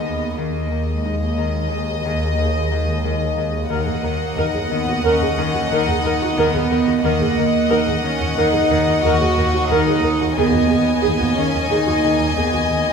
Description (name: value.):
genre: cinematic, suspense film score.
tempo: 90 BPM.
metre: 5/4.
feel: straight.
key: Eb minor.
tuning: A4 = 440 Hz.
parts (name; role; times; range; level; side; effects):
warm studio violin section; melody; 0.0-12.9 s; Eb5 to Ab5; -26 LUFS; left 2 dB; none.
warm symphonic violin section; second line; 0.0-12.9 s; Eb5; -25 LUFS; left 4 dB; none.
dark symphonic viola section; accompaniment; 0.0-12.9 s; Eb4 to Bb4; -24 LUFS; right 2 dB; none.
Celtic harp; riff; 0.0-12.9 s; Eb3 to Eb4; -24 LUFS; left 6 dB; none.
dark symphonic double bass section; bass; 0.0-12.9 s; Eb2; -25 LUFS; right 1 dB; none.
rich symphonic cello section; bass; 0.0-12.9 s; Ab3 to Gb4; -22 LUFS; right 5 dB; none.
swarming drone; drone; 0.0-12.9 s; Eb2; -27 LUFS; right 1 dB; built-in reverb.
concert harp; texture; 1.4-12.9 s; Eb5 to Bb5; -32 LUFS; left 4 dB; none.
room: wet scoring stage reverb, RT60 2.1 s.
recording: minimal, uncompressed stereo recording.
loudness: -16 LUFS.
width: side -6 dB against mid.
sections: 0.0-12.9 A section.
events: none.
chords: 0.0 Ab5/Eb; 3.7 Ebm.